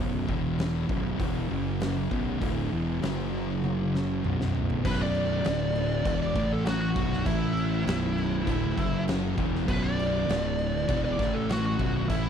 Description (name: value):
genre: stoner and doom metal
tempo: 99 BPM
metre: 4/4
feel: straight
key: B minor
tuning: A4 = 440 Hz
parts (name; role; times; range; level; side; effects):
- thick fuzz guitar; riff; 0.0-12.3 s; B1 to A3; -31 LUFS; left 11 dB; distortion
- thick fuzz guitar; riff; 0.0-12.3 s; B1 to A3; -31 LUFS; right 10 dB; distortion
- fuzz fingered electric bass; bass; 0.0-12.3 s; B0 to A1; -32 LUFS; equal; overdrive
- oversized low-tuned drum kit; drums; 0.3-12.2 s; crash cymbal, hi-hat, kick drum, snare drum, toms; -32 LUFS; equal; none
- fuzz lead guitar; melody; 4.9-12.3 s; E4 to D5; -31 LUFS; equal; wah, distortion, slapback echo
room: little or no reverb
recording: none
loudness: -25 LUFS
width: side -8 dB against mid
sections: 0.0-4.8 A section; 4.8-12.3 B section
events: drum fill 3.6-4.8; lead electric guitar solo 4.8-12.3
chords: 0.3 E5; 0.9 B5; 1.5 F#5; 2.1 Bm; 3.0 F#5; 4.2 B5; 5.4 D5; 6.1 Bm; 6.4 A5; 7.0 B5; 7.3 A5; 7.9 Bm; 8.8 F#5; 9.4 Bm; 10.3 D5; 10.9 Bm; 11.2 A5; 11.8 B5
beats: 0.60 1.21 1.81 | 2.42 3.03 3.63 4.24 | 4.84 5.45 6.05 6.66 | 7.26 7.87 8.47 9.07 | 9.68 10.28 10.89 11.49 | 12.10